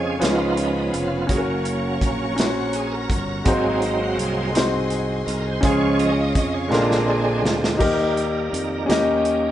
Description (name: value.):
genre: slow gospel.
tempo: 55 BPM (dotted quarters).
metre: 6/8.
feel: straight.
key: Db major.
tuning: A4 = 440 Hz.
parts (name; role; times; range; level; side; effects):
clear concert grand piano; accompaniment; 0.0-9.5 s; Ab2 to Eb5; -22 LUFS; left 1 dB; none.
bright tonewheel organ; sustained chords; 0.0-9.5 s; D3 to Eb5; -25 LUFS; right 3 dB; slow rotary speaker, overdrive, chorus vibrato.
warm symphonic string section; sustained chords; 0.0-7.8 s; Db5 to Db6; -32 LUFS; left 2 dB; none.
fingered electric bass; bass; 0.0-9.5 s; F1 to F2; -27 LUFS; equal; none.
natural country drum kit; drums; 0.2-9.4 s; crash cymbal, hi-hat, kick drum, snare drum; -24 LUFS; equal; none.
room: moderate large studio reverb, RT60 1.1 s.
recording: band playing live in one room, nothing above 10.3 kHz.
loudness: -18 LUFS.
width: side -12 dB against mid.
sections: 0.0-7.8 A section; 7.8-9.5 B section.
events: tonewheel organ solo 0.0-7.8; drum fill 6.7-7.8.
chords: 0.2 Db7; 1.3 Gb; 3.5 Ab7; 5.6 Db; 6.7 Bb7; 7.8 Eb; 8.9 Eb7.